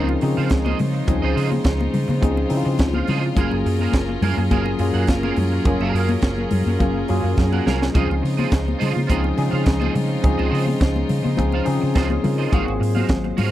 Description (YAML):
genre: disco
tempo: 105 BPM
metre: 4/4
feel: straight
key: Db major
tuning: A4 = 441 Hz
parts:
  - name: electric guitar at the edge of break-up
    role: accompaniment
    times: 0.0-13.5 s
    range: F4 to Gb5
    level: -28 LUFS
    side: right 8 dB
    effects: ensemble chorus
  - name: tine electric piano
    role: accompaniment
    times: 0.0-13.5 s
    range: F3 to Db5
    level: -23 LUFS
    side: left 2 dB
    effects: lush chorus
  - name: rich chamber string section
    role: sustained chords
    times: 0.0-13.5 s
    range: Db3 to C5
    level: -29 LUFS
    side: right 1 dB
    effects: none
  - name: hollow-body short-scale fingered electric bass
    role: bass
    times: 0.0-13.5 s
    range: Gb1 to Db3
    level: -22 LUFS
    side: right 1 dB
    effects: none
  - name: congas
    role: percussion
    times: 0.1-13.5 s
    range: none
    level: -26 LUFS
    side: left 4 dB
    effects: none
  - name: tight funk drum kit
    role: drums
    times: 0.2-13.5 s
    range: hi-hat, kick drum, snare drum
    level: -21 LUFS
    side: right 1 dB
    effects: none
room: little or no reverb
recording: dry, close 1970s-style studio recording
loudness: -17 LUFS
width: side -13 dB against mid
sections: 0.0-13.5 A section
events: drum fill 7.4-7.9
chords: 0.0 Dbmaj9; 3.4 Gbmaj9; 7.9 Dbmaj9; 12.5 Ab13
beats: 0.51 | 1.08 1.65 2.23 2.80 | 3.37 3.94 4.51 5.09 | 5.66 6.23 6.80 7.37 | 7.95 8.52 9.09 9.66 | 10.23 10.81 11.38 11.95 | 12.52 13.10